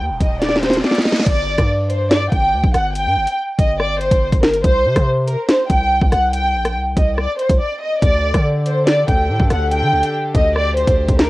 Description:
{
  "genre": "hip hop, drill",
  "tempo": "142 BPM",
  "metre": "4/4",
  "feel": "half-time",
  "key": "G harmonic minor",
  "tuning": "A4 = 440 Hz",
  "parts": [
    { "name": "hard-hitting 808-style bass", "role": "bass", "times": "0.0-11.3 s", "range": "Eb1 to D3", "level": "-20 LUFS", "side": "equal", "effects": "none" },
    { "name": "riser", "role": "sound effects", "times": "0.0-1.3 s", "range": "none", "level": "-33 LUFS", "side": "equal", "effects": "none" },
    { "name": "dark studio violin section", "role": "melody", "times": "0.2-11.3 s", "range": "Bb4 to G5", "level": "-18 LUFS", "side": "equal", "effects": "none" },
    { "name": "drill drum kit", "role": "drums", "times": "0.2-11.3 s", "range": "crash cymbal, hi-hat, kick drum, rim click, snare drum", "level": "-16 LUFS", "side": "equal", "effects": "cassette tape" },
    { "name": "warm chamber string section", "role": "sustained chords", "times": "8.0-11.3 s", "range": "D3 to A4", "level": "-25 LUFS", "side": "left 1 dB", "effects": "cassette tape" }
  ],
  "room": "light reverb",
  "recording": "home recording on cassette",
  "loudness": "-14 LUFS",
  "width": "side -19 dB against mid",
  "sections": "0.0-1.3 A section; 1.3-11.3 B section",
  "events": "riser 0.0-1.3; drum fill 0.4-1.3; break 7.6-8.0",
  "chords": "0.0 N.C.; 1.3 G5; 4.6 C5; 8.0 Dsus4"
}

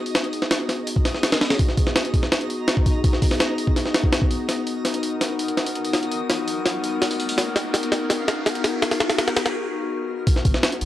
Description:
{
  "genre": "drum and bass, jungle",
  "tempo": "166 BPM",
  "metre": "4/4",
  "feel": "straight",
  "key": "G# dorian",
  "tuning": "A4 = 440 Hz",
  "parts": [
    { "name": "warbly tape-like pad", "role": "sustained chords", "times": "0.0-10.9 s", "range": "B3 to A#4", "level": "-26 LUFS", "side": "left 2 dB", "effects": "chorus, built-in reverb, vintage 12-bit sampler grit" },
    { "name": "soft dub sub bass", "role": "bass", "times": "0.0-10.9 s", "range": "F#1 to D#2", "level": "-28 LUFS", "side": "equal", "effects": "tube saturation, high-pass filter" },
    { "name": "twinkling granular texture", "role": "texture", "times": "0.0-9.6 s", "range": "D#5 to D#6", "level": "-37 LUFS", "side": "equal", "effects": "built-in reverb" },
    { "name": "jungle sampler-style drum kit", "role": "drums", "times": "0.1-10.9 s", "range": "hi-hat, kick drum, snare drum", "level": "-20 LUFS", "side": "equal", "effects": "studio ambience" },
    { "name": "riser", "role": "sound effects", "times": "5.9-9.5 s", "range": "none", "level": "-33 LUFS", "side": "left 1 dB", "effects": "none" }
  ],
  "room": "digital ambience",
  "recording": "dry, gritty hardware recording, cassette tape",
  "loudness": "-20 LUFS",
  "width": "side -13 dB against mid",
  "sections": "0.0-10.3 A section",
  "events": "build-up 0.0-10.3; drum fill 4.5-9.5; riser 5.9-9.5; break 9.5-10.3",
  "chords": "0.0 G#m7"
}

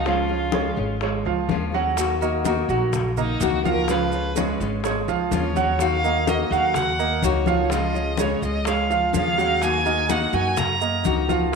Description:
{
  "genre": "latin, Cuban son and guajira",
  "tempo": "126 BPM",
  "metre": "4/4",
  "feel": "straight",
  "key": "Eb minor",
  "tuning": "A4 = 442 Hz",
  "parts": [
    { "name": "warm violin", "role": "melody", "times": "0.0-11.3 s", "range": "Eb4 to Bb5", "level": "-26 LUFS", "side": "right 1 dB", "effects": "none" },
    { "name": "nylon-string guitar", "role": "accompaniment", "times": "0.0-11.6 s", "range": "Db3 to Gb4", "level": "-27 LUFS", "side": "left 11 dB", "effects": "none" },
    { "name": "upright bass", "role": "bass", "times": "0.0-11.6 s", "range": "Ab1 to Gb2", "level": "-27 LUFS", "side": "equal", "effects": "none" },
    { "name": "clear baby grand piano", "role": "arpeggios", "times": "0.1-11.6 s", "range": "F3 to Gb5", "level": "-24 LUFS", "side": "right 7 dB", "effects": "none" },
    { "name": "bongos", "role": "percussion", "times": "0.1-11.5 s", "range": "none", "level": "-33 LUFS", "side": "left 11 dB", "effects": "none" },
    { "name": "congas", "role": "percussion", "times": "0.1-11.6 s", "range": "none", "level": "-30 LUFS", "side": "left 9 dB", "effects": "none" },
    { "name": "maracas", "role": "percussion", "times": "2.0-11.5 s", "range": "none", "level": "-36 LUFS", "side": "right 14 dB", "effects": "none" }
  ],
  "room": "wet echo chamber reverb, RT60 1.5 s, studio reverb",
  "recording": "1960s-style stereo with parts hard left and right",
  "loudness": "-19 LUFS",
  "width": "side -5 dB against mid",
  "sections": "0.0-11.6 A section",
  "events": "violin solo 0.0-11.6",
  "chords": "0.1 Db; 2.0 Ebm; 3.9 Db; 5.8 Ebm; 7.7 Db; 9.6 Ebm"
}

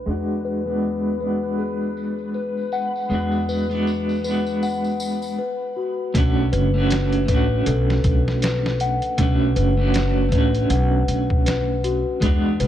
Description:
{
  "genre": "trip hop",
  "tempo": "79 BPM",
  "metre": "4/4",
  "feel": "swing 58% on 16ths",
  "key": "B dorian",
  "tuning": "A4 = 445 Hz",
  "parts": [
    { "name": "clean electric guitar", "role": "accompaniment", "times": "0.0-12.7 s", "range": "G#3 to F#4", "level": "-23 LUFS", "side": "right 2 dB", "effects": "tremolo, vintage 12-bit sampler grit, tape echo" },
    { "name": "upright bass", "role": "bass", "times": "0.0-12.7 s", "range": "F#1 to E2", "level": "-23 LUFS", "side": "equal", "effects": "none" },
    { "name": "backwards swelling texture", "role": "texture", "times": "0.0-5.4 s", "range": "B4", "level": "-38 LUFS", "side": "left 4 dB", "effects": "built-in reverb" },
    { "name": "tambourine and triangle", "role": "percussion", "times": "0.1-5.4 s", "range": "none", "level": "-40 LUFS", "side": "left 2 dB", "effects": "none" },
    { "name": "celesta", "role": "arpeggios", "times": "0.4-12.7 s", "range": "F#4 to F#5", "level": "-26 LUFS", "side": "left 4 dB", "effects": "vintage 12-bit sampler grit, ping-pong delay" },
    { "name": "trip hop sampler-style drum kit", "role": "drums", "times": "6.1-12.7 s", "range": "hi-hat, kick drum, snare drum", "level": "-23 LUFS", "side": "equal", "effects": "none" }
  ],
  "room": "light reverb",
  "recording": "dark, warm production, low-pass filter",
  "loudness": "-19 LUFS",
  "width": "side -11 dB against mid",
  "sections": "0.0-6.1 A section; 6.1-12.7 B section",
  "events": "filter sweep 0.0-6.1; break 5.4-6.1",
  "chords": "0.1 E7; 6.1 Bm7"
}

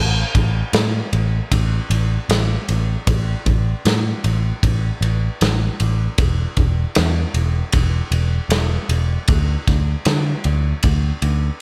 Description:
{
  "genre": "rock, shoegaze and dream pop",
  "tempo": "77 BPM",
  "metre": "4/4",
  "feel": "straight",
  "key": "unclear",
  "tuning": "A4 = 440 Hz",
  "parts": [
    { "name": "vintage muted picked electric bass", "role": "bass", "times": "0.0-11.5 s", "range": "E1 to D3", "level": "-20 LUFS", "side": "equal", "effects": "none" },
    { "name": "loose indie drum kit", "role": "drums", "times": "0.3-11.4 s", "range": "kick drum, ride cymbal, snare drum", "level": "-23 LUFS", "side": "equal", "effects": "none" }
  ],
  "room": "light reverb",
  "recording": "none",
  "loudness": "-19 LUFS",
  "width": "mono",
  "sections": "0.0-11.6 A section",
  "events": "none",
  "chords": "none"
}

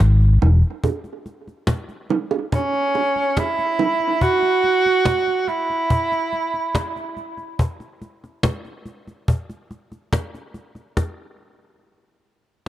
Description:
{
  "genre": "dub reggae",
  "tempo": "71 BPM",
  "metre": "4/4",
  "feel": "straight",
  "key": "unclear",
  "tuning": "A4 = 440 Hz",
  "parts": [
    { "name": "vintage muted fingered electric bass", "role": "bass", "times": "0.0-0.6 s", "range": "E1 to G#1", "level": "-12 LUFS", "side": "equal", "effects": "none" },
    { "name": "cajon", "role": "drums", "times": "0.2-11.2 s", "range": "none", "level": "-22 LUFS", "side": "equal", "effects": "none" },
    { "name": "bongos", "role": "percussion", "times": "0.4-4.0 s", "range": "none", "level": "-25 LUFS", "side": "right 6 dB", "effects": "tape echo" },
    { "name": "warm tenor saxophone", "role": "melody", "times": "2.5-7.2 s", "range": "C#4 to F#4", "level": "-19 LUFS", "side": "right 2 dB", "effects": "tape echo" }
  ],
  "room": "moderate spring reverb, RT60 2.6 s",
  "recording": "dark, warm production",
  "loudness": "-18 LUFS",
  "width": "side -13 dB against mid",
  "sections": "0.8-12.7 A section",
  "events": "break 0.0-0.8, 4.2-12.7; stop 11.0-12.7",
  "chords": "0.0 E; 0.8 N.C."
}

